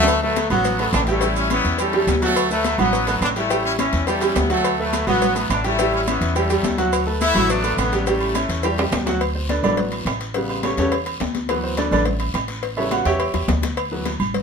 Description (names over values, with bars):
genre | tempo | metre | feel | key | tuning
latin, salsa | 210 BPM | 4/4 | straight | D major | A4 = 438 Hz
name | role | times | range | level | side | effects
bright trumpet section | melody | 0.0-8.9 s | F#3 to E4 | -22 LUFS | left 2 dB | none
bright upright piano | accompaniment | 0.0-14.1 s | C#3 to G5 | -22 LUFS | right 1 dB | none
upright bass | bass | 0.0-14.4 s | A1 to E2 | -25 LUFS | equal | none
timbales and agogo bells | percussion | 0.0-14.3 s | none | -28 LUFS | right 6 dB | none
congas | percussion | 0.1-14.4 s | none | -27 LUFS | left 2 dB | none
cowbell and bongos | percussion | 0.1-14.4 s | none | -29 LUFS | left 10 dB | none
guiro | percussion | 0.1-14.4 s | none | -35 LUFS | left 4 dB | none
maracas | percussion | 0.1-9.2 s | none | -36 LUFS | right 8 dB | none
room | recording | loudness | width
moderate studio reverb, RT60 0.8 s | minimal, uncompressed stereo recording | -18 LUFS | side -6 dB against mid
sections
0.1-9.2 A section; 9.2-14.4 B section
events
drum fill 8.6-9.2, 13.3-13.8; upright piano solo 9.2-14.4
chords
0.1 D6; 1.2 A7; 2.4 D6; 3.5 A7; 4.6 D6; 5.8 A7; 6.9 D6; 8.1 A7; 9.2 D6; 10.4 A7; 11.5 D6; 12.6 A7; 13.8 D6